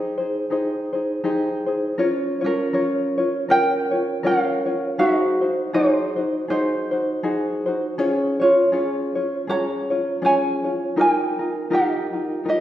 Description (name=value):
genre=Hawaiian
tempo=80 BPM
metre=4/4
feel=swing 57% on 8ths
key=Ab major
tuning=A4 = 440 Hz
part: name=tenor ukulele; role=melody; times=0.0-12.6 s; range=Db4 to Bb5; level=-21 LUFS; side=right 1 dB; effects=none
part: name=tenor ukulele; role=accompaniment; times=0.0-12.6 s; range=Db4 to Db5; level=-22 LUFS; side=left 1 dB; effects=none
room=wet recital hall reverb, RT60 1.6 s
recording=heard from further back in the room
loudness=-19 LUFS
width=side -12 dB against mid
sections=0.0-2.0 A section; 2.0-12.6 B section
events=none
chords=0.0 Abmaj7; 2.0 Bbm; 5.0 Ab7; 8.0 Db; 11.0 Ebadd9